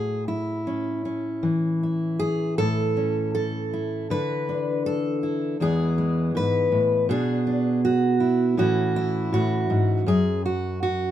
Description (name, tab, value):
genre	folk, solo fingerstyle acoustic guitar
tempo	80 BPM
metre	4/4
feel	rubato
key	unclear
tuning	A4 = 439 Hz
part	fingerpicked steel-string acoustic guitar	solo	0.0-11.1 s	E2 to B4	-21 LUFS	equal	none
room	light reverb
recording	minimal, uncompressed stereo recording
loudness	-21 LUFS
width	side -11 dB against mid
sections	0.0-11.1 A section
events	none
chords	0.0 A; 4.1 Dsus2; 5.6 E; 7.1 Bm; 8.6 A; 10.1 F#5